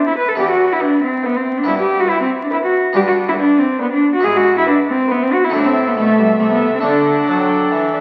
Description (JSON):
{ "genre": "classical, baroque-style concerto movement with solo episodes", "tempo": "140 BPM", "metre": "3/4", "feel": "straight", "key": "G major", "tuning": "A4 = 437 Hz", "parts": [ { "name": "dark cello", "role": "melody", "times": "0.0-7.9 s", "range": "G3 to B4", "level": "-17 LUFS", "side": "equal", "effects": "none" }, { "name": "warm chamber violin section", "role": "melody", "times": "0.0-7.9 s", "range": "E5 to A5", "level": "-31 LUFS", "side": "equal", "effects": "none" }, { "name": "rich chamber violin section", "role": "second line", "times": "0.0-8.0 s", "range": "D5 to A5", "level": "-28 LUFS", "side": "equal", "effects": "none" }, { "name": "dark chamber viola section", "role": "accompaniment", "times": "0.0-7.9 s", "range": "A4 to C5", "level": "-26 LUFS", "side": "equal", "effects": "none" }, { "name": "harpsichord", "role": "accompaniment", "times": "0.0-8.0 s", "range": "E2 to E4", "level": "-26 LUFS", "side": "equal", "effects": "none" }, { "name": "rich chamber cello section", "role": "bass", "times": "0.4-8.0 s", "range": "E2 to F#3", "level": "-29 LUFS", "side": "equal", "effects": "none" } ], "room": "wet scoring stage reverb, RT60 1.6 s", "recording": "very old 78 rpm record, vinyl crackle", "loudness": "-15 LUFS", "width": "mono", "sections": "0.0-8.0 A section", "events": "none", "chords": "0.4 Em; 1.7 Em/G; 3.0 G; 4.2 E/G#; 5.5 Am; 6.8 D" }